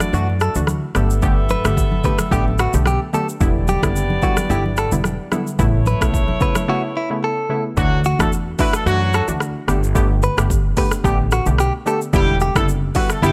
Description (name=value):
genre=afrobeats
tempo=110 BPM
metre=4/4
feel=swing 55% on 16ths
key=D major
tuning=A4 = 440 Hz
part: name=warm horn section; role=second line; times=0.0-13.3 s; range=F#3 to E5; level=-28 LUFS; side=equal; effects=none
part: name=glassy wavetable pluck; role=accompaniment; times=0.0-13.3 s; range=C#3 to G4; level=-25 LUFS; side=equal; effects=chorus
part: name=afro-pop drum kit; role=drums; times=0.0-13.3 s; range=hi-hat, kick drum, rim click, shaker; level=-23 LUFS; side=equal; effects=none
part: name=congas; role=percussion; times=0.0-6.7 s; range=none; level=-31 LUFS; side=equal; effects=none
part: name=direct-recorded clean electric guitar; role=melody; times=0.1-13.3 s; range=E4 to B4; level=-26 LUFS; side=equal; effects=digital delay
part: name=upright bass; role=bass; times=0.1-13.3 s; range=E1 to F#2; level=-22 LUFS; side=equal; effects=none
room=studio ambience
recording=none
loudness=-18 LUFS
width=mono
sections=0.0-7.8 A section; 7.8-13.3 B section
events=break 6.7-7.8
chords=0.0 Dadd9; 1.0 Gadd9; 3.4 Em7; 5.6 Aadd9; 7.8 Dadd9; 9.7 Gadd9; 12.1 Em7